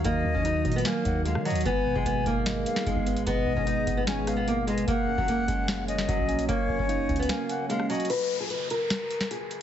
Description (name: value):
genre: hip hop, trap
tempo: 149 BPM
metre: 4/4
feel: half-time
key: unclear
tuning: A4 = 440 Hz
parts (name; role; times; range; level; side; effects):
- fingerpicked steel-string acoustic guitar; melody; 0.0-9.6 s; F#3 to B4; -29 LUFS; equal; low-pass filter, ping-pong delay
- mellow jazz flute; second line; 0.0-8.1 s; C#5 to G#5; -32 LUFS; left 4 dB; ping-pong delay
- mellow tine electric piano; accompaniment; 0.0-8.1 s; B2 to D#4; -32 LUFS; right 5 dB; phaser, low-pass filter
- ethereal airy pad; sustained chords; 0.0-8.1 s; B2 to G#4; -37 LUFS; left 1 dB; ensemble chorus, built-in reverb
- warm 808-style bass; bass; 0.0-7.3 s; F#1 to D#3; -32 LUFS; equal; none
- booming analog drum machine; drums; 0.0-9.6 s; hi-hat, kick drum, rim click, snare drum; -31 LUFS; equal; none
- downlifter; sound effects; 8.1-9.6 s; none; -35 LUFS; left 2 dB; none
room: light reverb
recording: heavily compressed radio sound, multiband compression, nothing above 7.9 kHz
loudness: -24 LUFS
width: side -10 dB against mid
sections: 0.0-8.1 A section; 8.1-9.6 B section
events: kick muted 7.3-8.1, 8.1-9.6; filter sweep 8.1-9.6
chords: 0.0 D#m; 1.7 G#m; 4.9 F#; 8.1 N.C.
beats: | 0.04 0.45 0.85 1.25 | 1.66 2.06 2.46 2.86 | 3.27 3.67 4.07 4.47 | 4.88 5.28 5.68 6.08 | 6.49 6.89 7.29 7.70 | 8.10 8.50 8.90 9.31